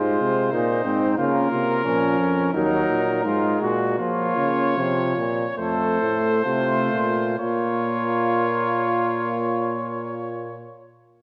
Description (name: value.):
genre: classical, imitative canzona for brass ensemble.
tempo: 62-92 BPM.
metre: 4/4.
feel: straight.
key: Bb minor.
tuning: A4 = 442 Hz.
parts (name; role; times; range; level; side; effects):
mellow trumpet; melody; 0.0-10.7 s; Bb4 to Db5; -29 LUFS; equal; none.
warm flugelhorn; second line; 0.0-10.7 s; Db4 to A4; -28 LUFS; equal; none.
clear trombone; accompaniment; 0.0-10.7 s; F3 to B#3; -29 LUFS; equal; none.
clear bass trombone; bass; 0.0-10.7 s; Eb2 to F3; -28 LUFS; equal; none.
room: wet scoring stage reverb, RT60 1.7 s.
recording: none.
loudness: -22 LUFS.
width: mono.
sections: 0.0-7.4 A section; 7.4-11.2 B section.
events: slowing down 0.0-7.4.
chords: 0.0 G#; 1.2 Bbm; 2.5 Ebm; 4.0 Bbm; 5.6 F; 7.4 Bbm.